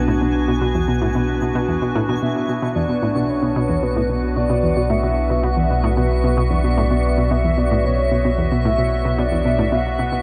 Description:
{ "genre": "ambient, sequencer-driven space music", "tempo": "112 BPM", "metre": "4/4", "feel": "straight", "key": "B dorian", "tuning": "A4 = 440 Hz", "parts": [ { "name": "evolving wavetable pad", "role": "sustained chords", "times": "0.0-10.2 s", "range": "B3 to E5", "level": "-25 LUFS", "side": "equal", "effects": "chorus, built-in reverb" }, { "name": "analog pluck", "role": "riff", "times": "0.0-10.2 s", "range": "E2 to B2", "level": "-24 LUFS", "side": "equal", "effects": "chorus, delay" }, { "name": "warm sub bass", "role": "bass", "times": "0.0-10.2 s", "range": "B1", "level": "-24 LUFS", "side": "equal", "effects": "none" }, { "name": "twinkling granular texture", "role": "texture", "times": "0.0-10.2 s", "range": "G#5 to C#6", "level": "-36 LUFS", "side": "equal", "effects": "built-in reverb" }, { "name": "soft octave-layered synth lead", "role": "melody", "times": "2.2-10.2 s", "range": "B4 to F#5", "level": "-26 LUFS", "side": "equal", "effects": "chorus, phaser, delay" } ], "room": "wet cathedral reverb, RT60 6.1 s", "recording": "in a vast, echoing space", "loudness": "-19 LUFS", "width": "mono", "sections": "0.0-10.2 A section", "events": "none", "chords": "0.0 Bmadd9" }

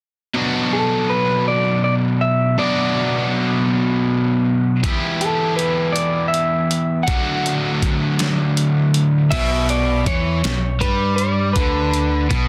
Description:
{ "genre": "indie rock", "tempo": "54 BPM (dotted quarters)", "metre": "6/8", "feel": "straight", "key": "B minor", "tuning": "A4 = 440 Hz", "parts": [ { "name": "crunchy overdriven guitar", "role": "riff", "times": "0.3-12.5 s", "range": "B2 to G4", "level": "-21 LUFS", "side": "equal", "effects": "none" }, { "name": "electric guitar through a small old amp", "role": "melody", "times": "0.7-12.5 s", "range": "A4 to F#5", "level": "-24 LUFS", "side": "equal", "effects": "analog delay" }, { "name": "boom bap sampler-style drum kit", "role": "drums", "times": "4.8-12.5 s", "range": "crash cymbal, hi-hat, kick drum, snare drum", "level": "-25 LUFS", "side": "equal", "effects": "none" }, { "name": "fingered electric bass", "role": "bass", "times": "9.3-12.5 s", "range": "B1 to G2", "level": "-24 LUFS", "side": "equal", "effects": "none" } ], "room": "light reverb", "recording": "dense, heavily limited modern master", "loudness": "-19 LUFS", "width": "mono", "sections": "0.3-9.3 A section; 9.3-12.5 B section", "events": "none", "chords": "0.3 Bm; 4.8 Em; 7.1 D; 9.3 Bm" }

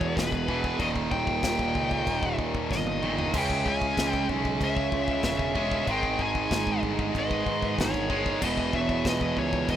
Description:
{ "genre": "heavy metal", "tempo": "95 BPM", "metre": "4/4", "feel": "straight", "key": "Eb phrygian dominant", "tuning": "A4 = 441 Hz", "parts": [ { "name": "high-gain lead guitar", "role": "melody", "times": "0.0-9.8 s", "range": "B4 to Ab5", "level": "-30 LUFS", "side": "left 2 dB", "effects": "distortion" }, { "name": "bluesy overdriven lead guitar", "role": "second line", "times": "0.0-9.8 s", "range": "G#4 to Fb5", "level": "-39 LUFS", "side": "equal", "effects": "distortion, ping-pong delay" }, { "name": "rich studio string section", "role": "sustained chords", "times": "0.0-9.8 s", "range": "Eb3 to Fb5", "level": "-46 LUFS", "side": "left 2 dB", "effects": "none" }, { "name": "distorted electric guitar", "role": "riff", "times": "0.0-9.8 s", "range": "Eb2 to Db4", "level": "-29 LUFS", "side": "right 7 dB", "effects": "overdrive" }, { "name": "tight distorted guitar", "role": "riff", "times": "0.0-9.8 s", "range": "Eb2 to Db4", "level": "-32 LUFS", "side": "left 11 dB", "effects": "distortion" }, { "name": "fuzz picked electric bass", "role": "bass", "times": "0.0-9.8 s", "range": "Eb1 to Ab2", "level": "-33 LUFS", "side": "left 1 dB", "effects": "overdrive" }, { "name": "modern studio drum kit", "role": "drums", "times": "0.0-9.8 s", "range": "china cymbal, crash cymbal, kick drum, snare drum, toms", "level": "-32 LUFS", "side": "left 1 dB", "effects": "none" } ], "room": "little or no reverb", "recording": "rough home demo mix", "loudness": "-24 LUFS", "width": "side -10 dB against mid", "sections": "0.0-9.8 A section", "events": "drum fill 2.7-3.3", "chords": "0.0 E; 0.8 Eb; 3.3 Dbm; 5.9 Abm; 8.4 E" }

